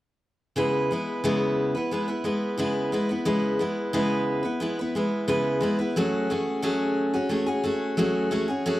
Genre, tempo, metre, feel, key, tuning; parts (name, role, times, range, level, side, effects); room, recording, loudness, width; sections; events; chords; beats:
folk; 89 BPM; 4/4; straight; C# minor; A4 = 440 Hz
picked steel-string acoustic guitar; accompaniment; 0.6-8.8 s; C#3 to B4; -23 LUFS; equal
light reverb; dark, warm production; -23 LUFS; side -15 dB against mid
0.6-8.8 A section
0.6 C#m7; 6.0 F#madd9
| 0.57 1.25 1.92 2.59 | 3.26 3.94 4.61 5.28 | 5.96 6.63 7.30 7.98 | 8.65